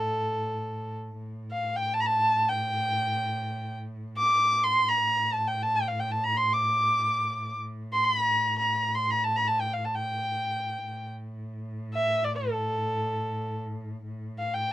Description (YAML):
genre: persian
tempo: free time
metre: none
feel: none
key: A dastgah shur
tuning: A4 = 440 Hz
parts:
  - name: warm kamancheh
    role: melody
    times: 0.0-14.7 s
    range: A4 to D6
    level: -25 LUFS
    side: equal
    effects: none
  - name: dark cello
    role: drone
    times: 0.0-14.7 s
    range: A2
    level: -35 LUFS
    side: equal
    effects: none
room: light reverb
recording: minimal, uncompressed stereo recording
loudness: -25 LUFS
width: side -14 dB against mid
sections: 0.0-1.2 A section; 1.2-14.1 A section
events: none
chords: none